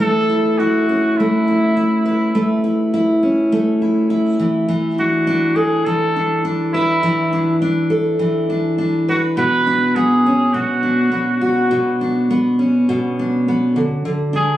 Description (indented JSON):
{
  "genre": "acoustic pop",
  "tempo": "102 BPM",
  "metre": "4/4",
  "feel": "swing 55% on 16ths",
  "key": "A major",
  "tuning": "A4 = 440 Hz",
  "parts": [
    { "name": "clear trumpet", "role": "melody", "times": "0.0-14.6 s", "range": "E4 to B4", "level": "-20 LUFS", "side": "right 1 dB", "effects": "plate reverb, digital delay" },
    { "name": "fingerpicked steel-string acoustic guitar", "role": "accompaniment", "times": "0.0-14.6 s", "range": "B2 to B4", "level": "-15 LUFS", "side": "equal", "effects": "none" }
  ],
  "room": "moderate small room ambience, RT60 0.5 s",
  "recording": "recorded on a phone in the room, studio reverb",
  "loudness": "-14 LUFS",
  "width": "side -13 dB against mid",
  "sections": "0.0-14.6 A section",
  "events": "none",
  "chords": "0.0 Aadd9; 4.4 E7sus4; 9.4 Bmadd9; 13.8 Dmaj7"
}